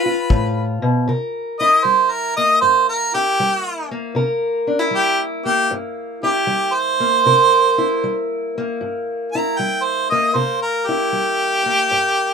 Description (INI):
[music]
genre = acoustic country blues, solo or duo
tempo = 78 BPM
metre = 4/4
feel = swing 67% on 8ths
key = C mixolydian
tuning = A4 = 439 Hz
[part]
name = warm harmonica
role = melody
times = 0.0-12.3 s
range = G4 to Bb5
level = -16 LUFS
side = right 2 dB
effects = none
[part]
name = fingerpicked steel-string acoustic guitar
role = accompaniment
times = 0.0-12.3 s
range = G2 to Bb4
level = -21 LUFS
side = left 2 dB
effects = none
[part]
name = kick drum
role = drums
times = 0.3-0.5 s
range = none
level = -16 LUFS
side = left 1 dB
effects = none
[sound]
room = light reverb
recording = minimal, uncompressed stereo recording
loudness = -16 LUFS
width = side -6 dB against mid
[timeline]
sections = 0.0-1.1 A section; 1.1-12.3 B section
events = harmonica solo 1.1-12.3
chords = 0.0 G7; 1.1 C7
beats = 0.31 | 1.08 1.85 2.62 3.39 | 4.16 4.93 5.70 6.48 | 7.25 8.03 8.80 9.58 | 10.35 11.13 11.91